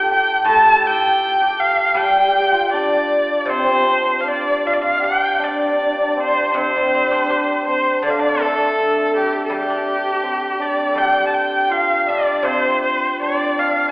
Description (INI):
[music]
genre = chinese traditional, Chinese chamber ensemble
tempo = 80 BPM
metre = 4/4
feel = rubato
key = G shang mode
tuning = A4 = 436 Hz
[part]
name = clear erhu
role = melody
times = 0.0-13.9 s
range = G4 to A5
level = -17 LUFS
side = equal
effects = none
[part]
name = hammered dulcimer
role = second line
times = 0.0-13.9 s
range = G3 to A4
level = -22 LUFS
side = right 1 dB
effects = none
[part]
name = mellow large dizi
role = second line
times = 0.0-13.9 s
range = G4 to A5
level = -22 LUFS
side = left 1 dB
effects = none
[part]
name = guzheng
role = accompaniment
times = 0.0-13.9 s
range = A2 to G4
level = -26 LUFS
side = equal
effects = none
[sound]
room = wet concert hall reverb, RT60 1.7 s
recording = recorded in a church or concert hall, telephone sound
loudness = -15 LUFS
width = side -23 dB against mid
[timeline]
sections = 0.0-13.9 A section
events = none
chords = none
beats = 0.47 1.21 | 1.96 2.70 3.47 4.25 | 5.03 5.80 6.55 7.29 | 8.04 8.79 9.52 10.25 | 10.98 11.73 12.47 13.22